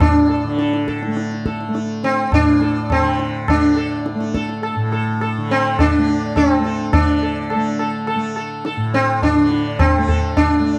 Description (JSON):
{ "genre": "indian classical, Hindustani", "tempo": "104 BPM", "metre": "3/4", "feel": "straight", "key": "unclear", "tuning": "A4 = 439 Hz", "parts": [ { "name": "sitar", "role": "melody", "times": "0.0-10.8 s", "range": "C4 to A4", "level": "-20 LUFS", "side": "equal", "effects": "none" }, { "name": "tanpura", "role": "drone", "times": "0.0-10.8 s", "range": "A2 to A3", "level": "-25 LUFS", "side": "equal", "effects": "none" }, { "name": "tabla", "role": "percussion", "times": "0.0-10.6 s", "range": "none", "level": "-23 LUFS", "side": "equal", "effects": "none" } ], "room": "light reverb", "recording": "dry, close 1970s-style studio recording", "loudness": "-18 LUFS", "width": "mono", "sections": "0.0-6.9 A section; 6.9-10.8 B section", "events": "none", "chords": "none" }